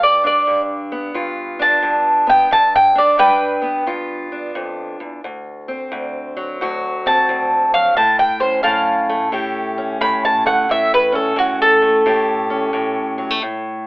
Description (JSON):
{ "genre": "acoustic country blues, solo or duo", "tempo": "88 BPM", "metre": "4/4", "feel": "swing 65% on 8ths", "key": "unclear", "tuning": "A4 = 440 Hz", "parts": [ { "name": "mandolin", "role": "melody", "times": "0.0-13.6 s", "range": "F#4 to B5", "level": "-13 LUFS", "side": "equal", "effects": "plate reverb" }, { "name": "fingerpicked steel-string acoustic guitar", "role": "accompaniment", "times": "0.0-13.9 s", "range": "D2 to G4", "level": "-22 LUFS", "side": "equal", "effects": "none" } ], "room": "moderate small room ambience, RT60 0.5 s", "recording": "telephone sound", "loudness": "-14 LUFS", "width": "side -24 dB against mid", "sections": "0.0-13.9 A section", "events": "mandolin solo 0.0-13.9", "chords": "0.0 G7; 5.2 D7; 8.0 A7" }